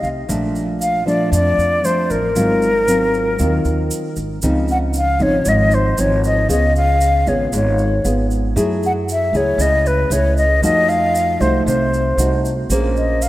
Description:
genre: bossa nova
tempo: 116 BPM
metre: 4/4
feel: straight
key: Db major from 4.4 s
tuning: A4 = 440 Hz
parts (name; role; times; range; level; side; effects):
- breathy mellow silver concert flute; melody; 0.0-13.3 s; Bb4 to Gb5; -18 LUFS; left 1 dB; none
- nylon-string guitar; accompaniment; 0.0-13.3 s; F2 to C5; -20 LUFS; equal; none
- upright bass; bass; 0.0-13.3 s; Ab1 to Gb2; -20 LUFS; right 1 dB; none
- tube shaker; percussion; 0.0-13.3 s; none; -30 LUFS; right 4 dB; none
room: moderate lush hall reverb, RT60 2.5 s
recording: rough home demo mix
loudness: -14 LUFS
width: side -16 dB against mid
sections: 0.0-4.4 A section; 4.4-13.3 B section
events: none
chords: 0.3 Bbmaj7; 2.4 Ab13; 4.4 Dbmaj9; 6.5 Db7; 8.6 Gbm9; 10.6 F7b9; 12.7 Bbm9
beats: | 0.28 0.80 1.32 1.83 | 2.35 2.87 3.38 3.90 | 4.42 4.94 5.45 5.97 | 6.49 7.00 7.52 8.04 | 8.56 9.07 9.59 10.11 | 10.63 11.14 11.66 12.18 | 12.70 13.21

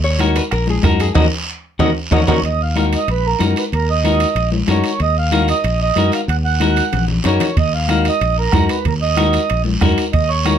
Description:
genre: latin, cumbia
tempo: 187 BPM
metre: 4/4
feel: straight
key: Eb minor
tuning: A4 = 440 Hz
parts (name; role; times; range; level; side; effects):
- lap resonator guitar; second line; 0.0-2.4 s; Gb4 to Eb5; -21 LUFS; left 3 dB; none
- fingered electric bass; bass; 0.0-10.6 s; Bb1 to Gb2; -18 LUFS; equal; none
- semi-hollow electric guitar; accompaniment; 0.2-10.6 s; Eb4 to Bb4; -19 LUFS; left 3 dB; none
- bombo; percussion; 0.2-2.4, 7.6-10.6 s; none; -19 LUFS; right 2 dB; none
- congas; percussion; 0.2-10.6 s; none; -23 LUFS; left 6 dB; none
- guiro; percussion; 0.2-10.6 s; none; -28 LUFS; right 3 dB; none
- timbales; percussion; 0.2-10.6 s; none; -27 LUFS; right 10 dB; none
- mellow accordion; melody; 2.1-10.6 s; Bb4 to Gb5; -19 LUFS; right 6 dB; none
room: light reverb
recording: close, detailed microphones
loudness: -14 LUFS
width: side -9 dB against mid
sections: 0.0-2.4 A section; 2.4-10.6 B section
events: resonator guitar played with a steel bar solo 0.0-2.4; band accent 1.2-2.4; drum fill 1.6-2.4, 6.6-7.6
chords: 0.0 Ebm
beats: 0.20 0.52 0.84 | 1.16 1.48 1.80 2.12 | 2.44 2.76 3.08 3.40 | 3.72 4.04 4.37 4.69 | 5.01 5.33 5.65 5.97 | 6.29 6.61 6.93 7.25 | 7.57 7.89 8.21 8.54 | 8.86 9.18 9.50 9.82 | 10.14 10.46

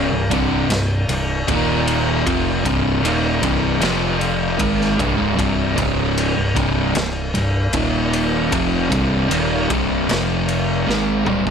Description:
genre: stoner and doom metal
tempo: 77 BPM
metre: 4/4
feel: straight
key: C minor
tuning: A4 = 440 Hz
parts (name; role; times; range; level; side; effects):
- fuzz guitar; riff; 0.0-11.5 s; C2 to Ab3; -18 LUFS; equal; distortion
- overdriven picked electric bass; bass; 0.0-11.5 s; C1 to Ab1; -26 LUFS; equal; none
- raw garage drum kit; drums; 0.3-11.5 s; kick drum, ride cymbal, snare drum, toms; -22 LUFS; left 1 dB; none
room: light reverb, small room ambience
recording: none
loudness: -16 LUFS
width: side -7 dB against mid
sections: 0.0-11.5 A section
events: drum fill 10.9-11.5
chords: 0.0 C5; 1.5 Eb5; 2.3 Cm; 3.8 F5; 4.6 C5; 7.7 Eb5; 8.5 Cm; 10.1 F5; 10.9 Cm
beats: 0.70 1.48 | 2.26 3.04 3.83 4.61 | 5.39 6.17 6.95 7.74 | 8.52 9.30 10.09 10.87

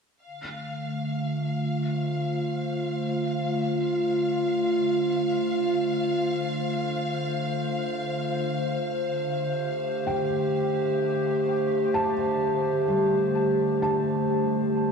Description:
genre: ambient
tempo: 64 BPM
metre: 4/4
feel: straight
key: D minor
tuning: A4 = 440 Hz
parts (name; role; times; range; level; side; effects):
- warm studio violin section; texture; 0.2-14.9 s; F5; -35 LUFS; left 2 dB; none
- warbly tape-like pad; sustained chords; 0.6-14.9 s; D3 to C5; -24 LUFS; equal; chorus, built-in reverb
- felt-muted upright piano; arpeggios; 10.1-14.9 s; G3 to A5; -30 LUFS; equal; ping-pong delay
room: wet concert hall reverb, RT60 2.3 s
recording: dark, warm production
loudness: -24 LUFS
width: side -5 dB against mid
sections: 0.2-14.9 A section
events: fade-out on violin section 0.2-14.9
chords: 0.2 Dm7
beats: | 0.23 1.17 2.11 3.04 | 3.98 4.92 5.86 6.79 | 7.73 8.67 9.61 10.54 | 11.48 12.42 13.36 14.29

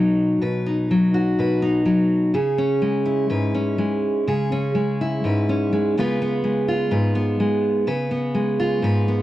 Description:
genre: folk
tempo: 124 BPM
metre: 4/4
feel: straight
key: unclear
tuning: A4 = 438 Hz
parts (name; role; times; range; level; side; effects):
- fingerpicked steel-string acoustic guitar; solo; 0.0-9.2 s; G#2 to B4; -18 LUFS; equal; none
room: small room ambience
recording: dry, close 1970s-style studio recording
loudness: -18 LUFS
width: side -14 dB against mid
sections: 0.0-9.2 A section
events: none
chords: 0.0 B; 2.3 C#m; 6.0 C#7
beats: | 0.41 0.89 1.37 1.85 | 2.34 2.82 3.30 3.78 | 4.26 4.75 5.23 5.71 | 6.19 6.67 7.16 7.64 | 8.12 8.60 9.08

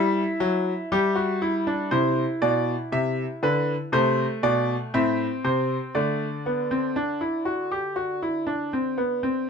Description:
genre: classical, baroque-style 3-part fugue for grand piano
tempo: 60 BPM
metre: 4/4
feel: straight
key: unclear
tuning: A4 = 439 Hz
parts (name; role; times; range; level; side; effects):
- bright concert grand piano; solo; 0.0-9.5 s; A2 to E5; -22 LUFS; equal; none
room: light reverb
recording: close, detailed microphones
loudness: -22 LUFS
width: side -6 dB against mid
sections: 0.0-1.9 A section; 1.9-9.5 B section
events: none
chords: 0.0 Em; 1.9 C; 3.9 Am; 6.0 D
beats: 0.91 | 1.92 2.93 3.93 4.94 | 5.96 6.96 7.96 8.97

